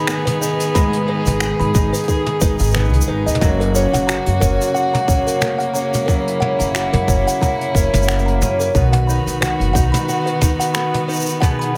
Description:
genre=folktronica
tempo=90 BPM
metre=4/4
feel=swing 56% on 16ths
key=unclear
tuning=A4 = 440 Hz
part: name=dark string quartet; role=sustained chords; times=0.0-11.8 s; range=C#3 to G#4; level=-25 LUFS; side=equal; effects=none
part: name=fingerpicked twelve-string acoustic guitar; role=arpeggios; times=0.0-11.8 s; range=F#2 to G#4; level=-23 LUFS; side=equal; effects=delay
part: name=jazz brush drum kit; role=drums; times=0.1-11.7 s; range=finger snaps, hi-hat, shaker, toms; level=-26 LUFS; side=equal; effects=none
part: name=music box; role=second line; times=0.3-11.7 s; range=A#4 to B5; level=-27 LUFS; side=equal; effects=delay
part: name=electronic kick drum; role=drums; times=0.8-11.6 s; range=none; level=-20 LUFS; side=equal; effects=none
part: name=upright bass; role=bass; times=1.3-10.6 s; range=F#1 to G#2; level=-21 LUFS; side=equal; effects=none
room=light reverb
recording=none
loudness=-17 LUFS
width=mono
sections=0.0-11.8 A section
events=none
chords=0.0 G#m; 3.4 F#; 8.8 B

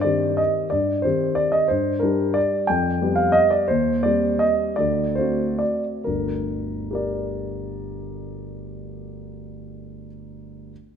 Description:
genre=classical, piano waltz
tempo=124-190 BPM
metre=3/4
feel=rubato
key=G minor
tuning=A4 = 443 Hz
part: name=warm concert grand piano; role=solo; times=0.0-10.7 s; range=G1 to G5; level=-21 LUFS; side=equal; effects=none
room=moderate recital hall reverb, RT60 1.6 s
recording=none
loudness=-19 LUFS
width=side -8 dB against mid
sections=0.0-6.1 A section; 6.1-8.6 B section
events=slowing down 3.2-6.1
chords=0.0 Cm/G; 1.7 Gm; 2.7 G7/F; 3.7 Cm/Eb; 4.8 D7; 6.1 Gm

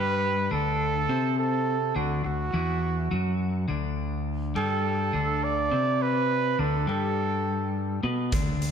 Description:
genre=indie rock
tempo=104 BPM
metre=4/4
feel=straight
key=D major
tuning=A4 = 440 Hz
part: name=warm trumpet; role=melody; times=0.0-8.0 s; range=F#4 to D5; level=-28 LUFS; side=right 5 dB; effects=slapback echo
part: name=twelve-string electric guitar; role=riff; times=0.0-8.7 s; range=D3 to C4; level=-29 LUFS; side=left 5 dB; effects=none
part: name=growling fingered electric bass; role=bass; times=0.0-8.7 s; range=D2 to C3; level=-30 LUFS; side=equal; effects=overdrive
part: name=raw garage drum kit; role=drums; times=8.3-8.7 s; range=hi-hat, kick drum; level=-27 LUFS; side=right 1 dB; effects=none
room=moderate lush hall reverb, RT60 1.7 s, small room ambience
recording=big arena sound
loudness=-24 LUFS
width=side -7 dB against mid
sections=0.0-8.7 A section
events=none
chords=0.0 D

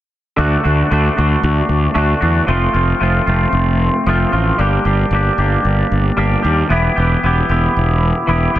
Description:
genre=rock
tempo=114 BPM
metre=4/4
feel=straight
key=unclear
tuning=A4 = 441 Hz
part: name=twangy electric guitar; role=arpeggios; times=0.4-8.6 s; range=D3 to G4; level=-16 LUFS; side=equal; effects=analog chorus, digital delay
part: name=fuzz fingered electric bass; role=bass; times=0.4-8.6 s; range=E1 to E2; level=-15 LUFS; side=equal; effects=overdrive
room=little or no reverb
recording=dense, heavily limited modern master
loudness=-13 LUFS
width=side -13 dB against mid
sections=0.4-8.6 A section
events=none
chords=0.4 D; 2.5 F; 4.6 Gm; 6.7 Em

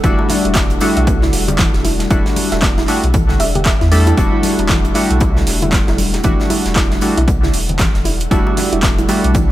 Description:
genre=deep house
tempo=116 BPM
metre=4/4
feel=swing 60% on 16ths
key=E minor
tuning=A4 = 438 Hz
part: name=soft round pluck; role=arpeggios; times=0.0-9.4 s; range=E3 to E5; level=-24 LUFS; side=equal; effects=chorus, sidechain pumping, digital delay
part: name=warm analog keys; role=stabs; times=0.0-9.5 s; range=G3 to A4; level=-18 LUFS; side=equal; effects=chorus, vintage 12-bit sampler grit, sidechain pumping, digital delay
part: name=sub bass with octave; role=bass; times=0.0-9.5 s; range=E1 to E2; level=-18 LUFS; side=equal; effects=tube saturation, sidechain pumping
part: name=electronic kick drum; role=drums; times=0.0-9.5 s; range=none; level=-16 LUFS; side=equal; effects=overdrive
part: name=punchy analog drum machine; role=drums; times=0.0-9.5 s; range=handclaps, hi-hat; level=-21 LUFS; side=right 1 dB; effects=overdrive
part: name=tight metal drum kit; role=drums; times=0.0-9.5 s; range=hi-hat, snare drum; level=-29 LUFS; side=right 2 dB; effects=high-pass filter on hats, high-pass filter on snare, high-pass filter on room
part: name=ethereal airy pad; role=texture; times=0.0-9.5 s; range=G3 to F#5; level=-26 LUFS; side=equal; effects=ensemble chorus, built-in reverb, sidechain pumping
part: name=bongos and congas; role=percussion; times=0.2-9.5 s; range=none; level=-26 LUFS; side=left 3 dB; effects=none
room=light reverb, studio reverb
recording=none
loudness=-12 LUFS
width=side -14 dB against mid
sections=0.0-9.5 A section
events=none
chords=0.0 Em11

